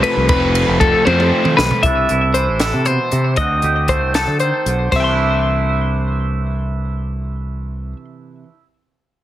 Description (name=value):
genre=math rock and midwest emo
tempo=78 BPM (dotted quarters)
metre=6/8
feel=straight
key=C major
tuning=A4 = 439 Hz
part: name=twelve-string electric guitar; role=arpeggios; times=0.0-8.0 s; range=A4 to C6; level=-18 LUFS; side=left 3 dB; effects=digital delay, plate reverb
part: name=overdriven semi-hollow guitar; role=riff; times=0.0-1.8 s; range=F2 to C4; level=-18 LUFS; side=equal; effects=none
part: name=fingered electric bass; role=bass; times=0.0-7.9 s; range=F1 to D3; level=-19 LUFS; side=equal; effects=none
part: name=compact cocktail drum kit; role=drums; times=0.0-5.0 s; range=crash cymbal, hi-hat, kick drum, ride cymbal, snare drum, toms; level=-21 LUFS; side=right 1 dB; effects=none
part: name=twangy electric guitar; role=accompaniment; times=1.8-8.6 s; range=A2 to G4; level=-23 LUFS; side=right 7 dB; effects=plate reverb
room=light reverb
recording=heavily compressed radio sound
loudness=-14 LUFS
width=side -13 dB against mid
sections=0.0-1.8 A section; 1.8-4.9 B section; 4.9-8.0 C section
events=drum fill 1.1-1.8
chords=0.0 F; 1.8 C69; 3.4 D7b9; 4.9 C69